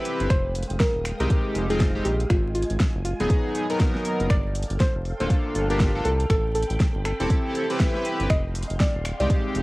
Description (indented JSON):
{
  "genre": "deep house",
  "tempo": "120 BPM",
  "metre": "4/4",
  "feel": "swing 60% on 16ths",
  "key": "unclear",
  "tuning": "A4 = 442 Hz",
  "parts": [
    { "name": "soft round pluck", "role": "melody", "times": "0.0-9.5 s", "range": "F4 to Eb5", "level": "-30 LUFS", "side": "equal", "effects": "chorus, cassette tape, tape echo" },
    { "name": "soft string machine", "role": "sustained chords", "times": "0.0-9.6 s", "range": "Ab3 to Eb6", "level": "-37 LUFS", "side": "equal", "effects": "phaser, ensemble chorus, sidechain pumping, cassette tape" },
    { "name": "chorused polysynth", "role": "stabs", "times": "0.0-9.6 s", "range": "Gb3 to B4", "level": "-26 LUFS", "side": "equal", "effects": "sidechain pumping, cassette tape, tape echo" },
    { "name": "deep house drum kit", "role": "drums", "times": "0.1-9.6 s", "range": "finger snaps, hi-hat, snare drum", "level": "-30 LUFS", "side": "equal", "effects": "small room ambience, cassette tape" },
    { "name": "round analog bass", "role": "bass", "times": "0.2-9.6 s", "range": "D1 to C2", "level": "-27 LUFS", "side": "equal", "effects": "sidechain pumping" },
    { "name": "electronic kick drum", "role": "drums", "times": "0.3-9.4 s", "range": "none", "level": "-22 LUFS", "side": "equal", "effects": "small room ambience, cassette tape" }
  ],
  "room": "light reverb",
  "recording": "home recording on cassette, vinyl crackle",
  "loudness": "-21 LUFS",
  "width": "side -21 dB against mid",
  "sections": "0.0-9.6 A section",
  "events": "none",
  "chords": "0.3 Fm9; 2.3 Abm9; 4.3 Gm9; 6.3 Am9; 8.3 Fm9",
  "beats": "| 0.30 0.80 1.30 1.80 | 2.30 2.80 3.30 3.80 | 4.30 4.80 5.30 5.80 | 6.30 6.80 7.30 7.80 | 8.30 8.80 9.30"
}